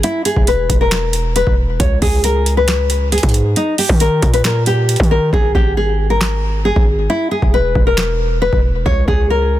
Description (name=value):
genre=hip hop, trap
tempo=136 BPM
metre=4/4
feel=half-time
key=unclear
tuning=A4 = 439 Hz
part: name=nylon-string guitar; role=melody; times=0.0-9.6 s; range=D#4 to C#5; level=-17 LUFS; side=left 2 dB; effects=ping-pong delay
part: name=hard-hitting 808-style bass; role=bass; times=0.0-9.6 s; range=E1 to D#3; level=-17 LUFS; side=equal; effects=none
part: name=booming analog drum machine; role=drums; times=0.0-9.3 s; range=handclaps, hi-hat, kick drum, snare drum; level=-16 LUFS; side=equal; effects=none
room=little or no reverb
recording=dense, heavily limited modern master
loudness=-12 LUFS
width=side -13 dB against mid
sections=0.0-9.6 A section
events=hi-hats muted 5.3-9.6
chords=0.0 E5; 1.8 C#5; 3.6 D#; 5.3 G#sus2; 7.1 E5; 8.9 C#5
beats=| 0.03 0.47 0.92 1.36 | 1.80 2.24 2.68 3.12 | 3.56 4.00 4.45 4.89 | 5.33 5.77 6.21 6.65 | 7.09 7.53 7.97 8.42 | 8.86 9.30